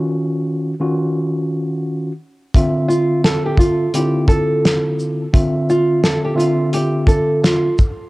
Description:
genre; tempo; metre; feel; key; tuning
hip hop, boom-bap hip-hop; 86 BPM; 4/4; swing 60% on 16ths; D minor; A4 = 440 Hz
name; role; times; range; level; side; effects
mellow tine electric piano; accompaniment; 0.0-7.7 s; D3 to E5; -18 LUFS; equal; medium stereo tremolo, cassette tape, high-pass filter, low-pass filter
cloth-damped thuddy drum kit; drums; 2.5-8.0 s; hi-hat, kick drum, shaker, snare drum; -15 LUFS; equal; cassette tape
nylon-string guitar; melody; 2.9-7.7 s; F4 to A4; -18 LUFS; right 1 dB; high-pass filter, low-pass filter, cassette tape
room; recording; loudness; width
small room ambience; home recording on cassette; -14 LUFS; side -21 dB against mid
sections
0.0-2.5 A section; 2.5-8.1 B section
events
break 0.0-2.5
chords
0.0 Ebm9; 2.5 Dm9

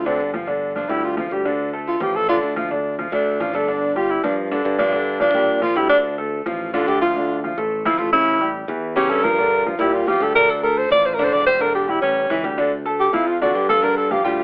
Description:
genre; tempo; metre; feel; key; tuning
jazz; 216 BPM; 4/4; straight; D minor; A4 = 435 Hz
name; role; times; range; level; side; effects
breathy tenor saxophone; second line; 0.0-14.4 s; C4 to D5; -18 LUFS; equal; none
modern bright fingered electric bass; bass; 0.0-14.4 s; E1 to Bb2; -27 LUFS; equal; none
clear baby grand piano; accompaniment; 0.1-14.4 s; C#3 to A5; -22 LUFS; equal; none
room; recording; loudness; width
moderate studio reverb, RT60 0.7 s; telephone sound; -17 LUFS; side -32 dB against mid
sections
0.0-12.7 A section; 12.7-14.4 A section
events
tenor saxophone solo 0.0-14.4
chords
0.5 G5; 1.6 Dm; 3.8 Gm7; 6.0 Dm; 8.3 A7; 9.4 Gm7; 10.5 Dm; 11.6 Em7b5; 12.2 A7; 12.7 Dm; 13.8 G5

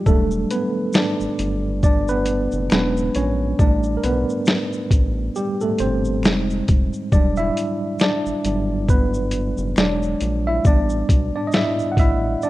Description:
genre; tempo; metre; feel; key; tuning
lo-fi hip hop; 68 BPM; 4/4; swing 57% on 16ths; E minor; A4 = 442 Hz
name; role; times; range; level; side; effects
tine electric piano; accompaniment; 0.0-12.5 s; F#3 to F#5; -21 LUFS; right 1 dB; overdrive, fast stereo tremolo, cassette tape, low-pass filter
round analog bass; bass; 0.1-12.4 s; E1 to B1; -24 LUFS; equal; none
boom bap sampler-style drum kit; drums; 0.1-12.5 s; hi-hat, kick drum, shaker, snare drum; -18 LUFS; equal; vintage 12-bit sampler grit
finger snap; percussion; 0.9-11.8 s; none; -40 LUFS; left 3 dB; none
room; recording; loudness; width
light reverb; rough home demo mix, cassette tape; -17 LUFS; side -16 dB against mid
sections
0.0-12.5 A section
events
tine electric piano solo 0.0-12.5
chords
0.1 Em9; 2.7 E13; 3.6 A9sus4; 6.2 Fm9; 7.1 Em9; 9.8 E13; 10.7 A9sus4

